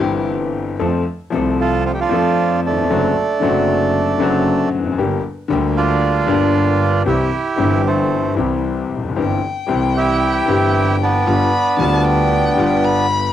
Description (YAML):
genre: tango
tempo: 115 BPM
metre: 4/4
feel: rubato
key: F major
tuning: A4 = 437 Hz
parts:
  - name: warm violin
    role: second line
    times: 0.0-0.3, 9.2-13.3 s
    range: G4 to B5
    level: -22 LUFS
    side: left 5 dB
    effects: cassette tape
  - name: warm concert grand piano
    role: accompaniment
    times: 0.0-13.3 s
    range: E1 to A4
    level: -18 LUFS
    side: left 4 dB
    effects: cassette tape
  - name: clear double bass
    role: bass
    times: 0.0-13.3 s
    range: F1 to F2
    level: -22 LUFS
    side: right 4 dB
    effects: transformer saturation
  - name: bandoneon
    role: melody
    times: 1.6-13.1 s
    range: A3 to A4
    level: -18 LUFS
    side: right 4 dB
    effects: cassette tape
room: moderate studio reverb, RT60 0.6 s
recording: home recording on cassette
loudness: -14 LUFS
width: side -11 dB against mid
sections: 0.8-13.3 A section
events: none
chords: 0.0 C; 0.8 F; 2.9 D7/F#; 5.0 Gm; 7.1 C; 11.3 G7